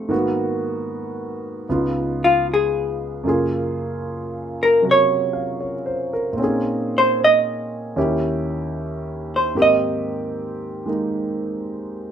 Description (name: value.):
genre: jazz ballad.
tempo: 76 BPM.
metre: 4/4.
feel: swing 69% on 8ths.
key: unclear.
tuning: A4 = 439 Hz.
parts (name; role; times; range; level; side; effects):
vintage hollow-body jazz guitar; melody; 0.0-10.9 s; A3 to Eb5; -17 LUFS; equal; none.
warm concert grand piano; accompaniment; 0.0-12.1 s; Db2 to F5; -22 LUFS; right 1 dB; none.
room: wet studio reverb, RT60 0.6 s.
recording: rough home demo mix.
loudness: -19 LUFS.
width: side -8 dB against mid.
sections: 0.0-12.1 A section.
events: hollow-body jazz guitar solo 0.0-12.1.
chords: 0.1 Abm9; 1.7 Db9; 3.2 Gbmaj9; 6.4 Bbm11; 8.0 Eb7b9; 9.5 Abmaj9.